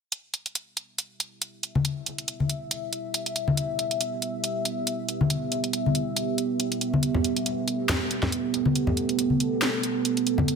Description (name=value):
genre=deep dubstep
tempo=139 BPM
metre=4/4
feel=swing 56% on 16ths, half-time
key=E minor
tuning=A4 = 440 Hz
part: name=deep dark ambient pad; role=sustained chords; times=2.1-10.6 s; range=B3 to E5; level=-27 LUFS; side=right 3 dB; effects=chorus, built-in reverb
part: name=garage drum kit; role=drums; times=0.1-10.6 s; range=hi-hat, snare drum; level=-27 LUFS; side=right 1 dB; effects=overdrive
part: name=congas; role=percussion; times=1.8-10.5 s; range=none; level=-26 LUFS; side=left 3 dB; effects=none
room=moderate lush hall reverb, RT60 2.0 s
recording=none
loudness=-24 LUFS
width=side -6 dB against mid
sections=0.1-10.6 A section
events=none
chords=0.1 Em